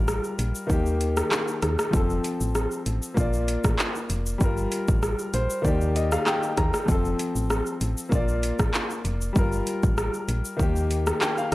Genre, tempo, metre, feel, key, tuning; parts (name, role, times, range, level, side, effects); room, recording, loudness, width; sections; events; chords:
dancehall; 97 BPM; 4/4; straight; G minor; A4 = 439 Hz
warm grand piano; accompaniment; 0.0-11.5 s; Eb3 to Bb5; -28 LUFS; left 2 dB
solid FM bass; bass; 0.0-11.5 s; F1 to Eb2; -26 LUFS; equal
deep house drum kit; drums; 0.1-11.5 s; handclaps, hi-hat, kick drum, rim click, shaker; -25 LUFS; equal; overdrive
little or no reverb; dry, gritty hardware recording, transformer saturation; -22 LUFS; side -18 dB against mid
0.0-11.5 A section
grand piano fill 5.0-6.9, 10.9-11.5
0.0 Gm7; 0.7 Eb; 1.9 F; 3.2 Bb; 4.4 Gm7; 5.6 Eb; 6.9 F; 8.1 Bb; 9.4 Gm7; 10.6 Eb